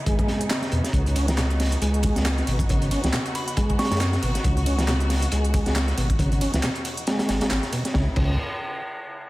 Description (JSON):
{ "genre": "breakbeat, breaks", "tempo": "137 BPM", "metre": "4/4", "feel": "swing 57% on 16ths", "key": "C# minor", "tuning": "A4 = 441 Hz", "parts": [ { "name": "rich symphonic string section", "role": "sustained chords", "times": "0.0-8.2 s", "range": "C#3 to F#4", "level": "-33 LUFS", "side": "left 1 dB", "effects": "sidechain pumping" }, { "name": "tonewheel organ", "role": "riff", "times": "0.1-8.4 s", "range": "B2 to C#4", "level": "-28 LUFS", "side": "right 1 dB", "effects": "chorus vibrato, stopped rotary speaker, tube saturation, vintage 12-bit sampler grit, tape echo" }, { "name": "saturated sub bass", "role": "bass", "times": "0.1-8.4 s", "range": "G#1 to F#2", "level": "-24 LUFS", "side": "equal", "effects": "tube saturation" }, { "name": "crunchy breakbeat drum kit", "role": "drums", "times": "0.1-8.3 s", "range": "crash cymbal, hi-hat, kick drum, snare drum", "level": "-25 LUFS", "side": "equal", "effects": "none" }, { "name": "garage drum kit", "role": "drums", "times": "0.1-7.9 s", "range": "handclaps, hi-hat, ride cymbal", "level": "-32 LUFS", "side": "right 1 dB", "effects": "none" }, { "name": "soft synth bell", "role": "melody", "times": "3.4-4.0 s", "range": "B5 to C#6", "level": "-33 LUFS", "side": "right 2 dB", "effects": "chorus, phaser, AM radio sound, vintage 12-bit sampler grit, tape echo" } ], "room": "little or no reverb", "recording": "none", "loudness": "-21 LUFS", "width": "side -18 dB against mid", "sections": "0.0-7.9 A section; 7.9-9.3 B section", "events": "drop 0.0-7.9", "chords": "0.0 C#m9", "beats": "0.07 0.50 | 0.94 1.38 1.82 2.25 | 2.69 3.13 3.57 4.01 | 4.44 4.88 5.32 5.76 | 6.20 6.63 7.07 7.51 | 7.95" }